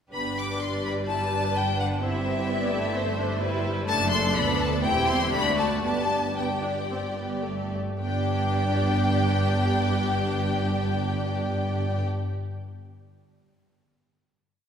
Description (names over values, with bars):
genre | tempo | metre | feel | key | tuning
quick classical-period movement for string orchestra | 107-130 BPM | 4/4 | rubato | G major | A4 = 438 Hz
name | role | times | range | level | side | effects
rich chamber violin section | melody | 0.1-12.0 s | E5 to D6 | -29 LUFS | left 3 dB | none
rich studio violin section | second line | 0.1-12.0 s | F#4 to G5 | -31 LUFS | left 2 dB | none
rich chamber viola section | accompaniment | 0.1-12.0 s | G3 to E4 | -30 LUFS | right 2 dB | none
clear chamber double bass section | bass | 0.1-12.0 s | E1 to D2 | -30 LUFS | right 1 dB | none
warm chamber cello section | bass | 0.1-12.0 s | D2 to G2 | -31 LUFS | right 1 dB | none
room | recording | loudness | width
wet concert hall reverb, RT60 2.1 s | recorded in a church or concert hall | -23 LUFS | side -8 dB against mid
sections
0.1-8.0 A section; 8.0-12.4 final chord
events
slowing down 3.0-8.0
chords
0.1 G; 2.0 Am7/G; 3.9 D/F#; 4.8 C/E; 5.3 D; 5.8 G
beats
| 0.11 0.60 1.07 1.55 | 2.02 2.49 2.96 3.42 | 3.89 4.36 4.84 5.33 | 5.84 6.37 6.90 7.45 | 8.01 8.55 9.10 9.65 | 10.20 10.75 11.30 11.86